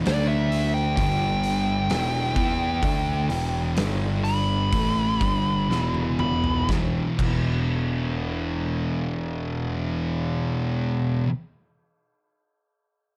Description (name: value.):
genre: stoner and doom metal.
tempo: 60-66 BPM.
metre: 4/4.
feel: straight.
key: E minor.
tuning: A4 = 440 Hz.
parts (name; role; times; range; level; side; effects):
thick fuzz guitar; riff; 0.0-11.3 s; E2 to E4; -30 LUFS; equal; distortion.
thick fuzz guitar; riff; 0.0-11.3 s; E2 to E4; -31 LUFS; equal; distortion.
fuzz picked electric bass; bass; 0.0-11.2 s; E1 to E2; -30 LUFS; equal; overdrive.
fuzz lead guitar; melody; 0.1-6.7 s; D5 to B5; -30 LUFS; equal; distortion.
oversized low-tuned drum kit; drums; 0.1-7.5 s; crash cymbal, hi-hat, kick drum, snare drum, toms; -32 LUFS; equal; none.
room: small room ambience.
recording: dark, warm production.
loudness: -24 LUFS.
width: mono.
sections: 0.0-6.7 A section; 6.7-10.7 B section.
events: slowing down 0.0-6.7; lead electric guitar solo 0.0-6.7; drum fill 5.7-6.7.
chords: 0.1 D5; 1.0 G5; 1.9 Em; 3.8 G5; 4.7 Em; 6.7 E5.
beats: 0.06 0.97 1.89 | 2.83 3.77 4.73 5.70 | 6.69 7.70 8.70 9.70.